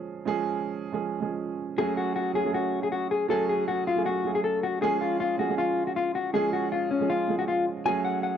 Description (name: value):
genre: hip hop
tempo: 158 BPM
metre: 4/4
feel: half-time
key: F# harmonic minor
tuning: A4 = 440 Hz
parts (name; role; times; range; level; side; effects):
- dark concert grand piano; accompaniment; 0.0-8.4 s; E#3 to G#4; -29 LUFS; right 8 dB; cassette tape
- mellow electric guitar; melody; 1.8-8.4 s; C#4 to G#5; -26 LUFS; left 5 dB; cassette tape
room: moderate spring reverb, RT60 1.7 s, small room ambience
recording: home recording on cassette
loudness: -25 LUFS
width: side -8 dB against mid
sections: 0.0-7.9 A section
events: break 0.0-1.8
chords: 0.0 C#; 1.8 F#madd9; 4.8 C#; 7.9 F#madd9